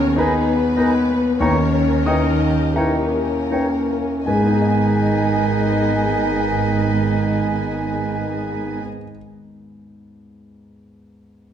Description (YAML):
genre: classical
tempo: 37-52 BPM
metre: 4/4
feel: rubato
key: G# minor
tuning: A4 = 440 Hz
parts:
  - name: clear concert grand piano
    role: melody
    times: 0.0-11.5 s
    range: D#2 to D#6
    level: -22 LUFS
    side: left 2 dB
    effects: none
  - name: warm chamber violin section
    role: melody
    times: 0.0-8.8 s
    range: G#3 to D#5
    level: -29 LUFS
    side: left 3 dB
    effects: none
  - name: warm symphonic violin section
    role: second line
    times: 0.0-8.8 s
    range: A#4 to G#5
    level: -30 LUFS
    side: left 1 dB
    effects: none
  - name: rich symphonic viola section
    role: accompaniment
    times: 0.0-8.8 s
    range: B3 to B4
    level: -31 LUFS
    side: right 1 dB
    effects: none
  - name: dark French horn section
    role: sustained chords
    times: 0.0-8.8 s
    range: G#3 to D#4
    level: -24 LUFS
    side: left 3 dB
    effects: none
  - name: bright clarinet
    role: second line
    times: 0.2-8.8 s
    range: D#4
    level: -28 LUFS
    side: left 1 dB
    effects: none
  - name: bright oboe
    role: second line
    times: 0.2-8.8 s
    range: B4 to D#5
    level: -33 LUFS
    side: right 3 dB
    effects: none
  - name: mellow hollow large flute ensemble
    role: second line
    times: 0.2-8.8 s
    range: G5 to G#5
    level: -29 LUFS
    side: right 2 dB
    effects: none
  - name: mellow bassoon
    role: accompaniment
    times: 0.2-8.8 s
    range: D#3 to E3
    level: -30 LUFS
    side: right 2 dB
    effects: none
  - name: rich chamber double bass section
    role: bass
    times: 1.4-8.8 s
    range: G#1 to D#2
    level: -25 LUFS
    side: right 7 dB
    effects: none
  - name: warm symphonic cello section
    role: bass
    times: 1.4-8.8 s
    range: G#2 to D#3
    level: -26 LUFS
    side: right 5 dB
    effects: none
room: wet recital hall reverb, RT60 1.4 s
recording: dark, warm production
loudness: -16 LUFS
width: side -9 dB against mid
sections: 0.0-4.3 A section; 4.3-10.0 B section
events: slowing down 0.0-4.3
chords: 0.0 G#m/D#; 1.4 D#7b9; 4.3 G#m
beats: 0.18 1.40 2.76 | 4.27 5.68 7.09 8.53